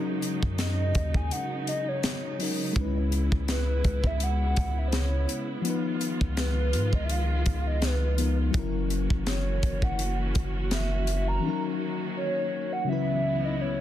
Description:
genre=contemporary R&B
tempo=83 BPM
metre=4/4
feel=swing 54% on 16ths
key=C# dorian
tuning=A4 = 438 Hz
part: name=mellow FM electric piano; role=accompaniment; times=0.0-13.8 s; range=C#3 to B4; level=-32 LUFS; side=left 4 dB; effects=chorus
part: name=dark studio string section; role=sustained chords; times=0.0-13.8 s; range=C#2 to F#4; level=-35 LUFS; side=right 3 dB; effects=none
part: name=tight funk drum kit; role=drums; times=0.2-11.3 s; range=hi-hat, kick drum, snare drum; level=-29 LUFS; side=equal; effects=none
part: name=long sustained 808-style bass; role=bass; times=0.4-11.4 s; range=F#1 to G#2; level=-27 LUFS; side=equal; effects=none
part: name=hollow clarinet-like synth lead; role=melody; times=0.6-13.8 s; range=B4 to A#5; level=-33 LUFS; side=right 1 dB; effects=chorus, ping-pong delay
room=little or no reverb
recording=dense, heavily limited modern master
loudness=-25 LUFS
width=side -12 dB against mid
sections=0.0-13.8 A section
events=break 1.3-2.8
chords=0.0 D#m7; 2.8 C#m7; 5.6 C#9; 8.5 F#7; 11.4 D#m7; 12.9 C#m7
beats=0.59 1.31 2.04 | 2.76 3.48 4.20 4.93 | 5.65 6.37 7.09 7.82 | 8.54 9.26 9.99 10.71 | 11.43 12.16 12.88 13.60

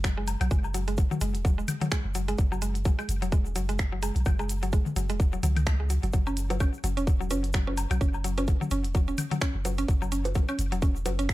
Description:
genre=minimal techno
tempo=128 BPM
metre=4/4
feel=swing 57% on 16ths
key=unclear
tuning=A4 = 440 Hz
part: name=mallet-like synth pluck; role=riff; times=0.0-11.3 s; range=F#3 to C#4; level=-33 LUFS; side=equal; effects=chorus, sidechain pumping, ping-pong delay
part: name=punchy sub bass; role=bass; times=0.0-11.3 s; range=E1 to C#2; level=-29 LUFS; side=equal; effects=sidechain pumping
part: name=electronic kick drum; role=drums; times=0.0-11.3 s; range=none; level=-25 LUFS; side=equal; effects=none
part: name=minimal click drum kit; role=drums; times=0.0-11.3 s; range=finger snaps, hi-hat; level=-36 LUFS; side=right 1 dB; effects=none
part: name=egg shaker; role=percussion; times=0.0-11.3 s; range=none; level=-44 LUFS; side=left 3 dB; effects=none
part: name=electronic woodblock, toms and bongos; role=percussion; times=0.3-11.2 s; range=none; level=-34 LUFS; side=left 2 dB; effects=digital delay
room=light reverb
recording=dark, warm production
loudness=-25 LUFS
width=side -17 dB against mid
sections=0.0-11.3 A section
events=none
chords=0.0 F#5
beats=0.04 | 0.51 0.98 1.45 1.92 | 2.38 2.85 3.32 3.79 | 4.26 4.73 5.20 5.67 | 6.13 6.60 7.07 7.54 | 8.01 8.48 8.95 9.42 | 9.88 10.35 10.82 11.29

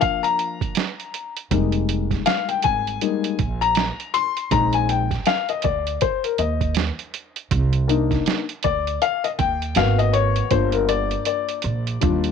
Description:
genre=hip hop, jazz-hop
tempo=80 BPM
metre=4/4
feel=swing 60% on 16ths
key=F dorian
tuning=A4 = 440 Hz
part: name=dark upright piano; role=accompaniment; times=0.0-12.3 s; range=F3 to C6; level=-21 LUFS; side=left 10 dB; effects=none
part: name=lo-fi sampler-style drum kit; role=drums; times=0.0-12.3 s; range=hi-hat, kick drum, snare drum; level=-25 LUFS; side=right 8 dB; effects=none
part: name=upright bass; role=bass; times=1.5-12.3 s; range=F1 to Eb2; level=-23 LUFS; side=right 2 dB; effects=none
room=light reverb, studio reverb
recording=1960s-style stereo with parts hard left and right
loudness=-19 LUFS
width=side -6 dB against mid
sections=0.0-12.3 A section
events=break 0.0-1.5; upright piano solo 0.0-12.3; drum fill 10.5-12.3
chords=0.0 Fsus4; 1.5 Fm11; 4.5 Bb7sus4; 7.5 Cm7; 9.8 Abm7; 10.5 Gm7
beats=0.01 0.76 | 1.51 2.26 3.01 3.76 | 4.51 5.26 6.01 6.76 | 7.51 8.26 9.01 9.76 | 10.51 11.26 12.01

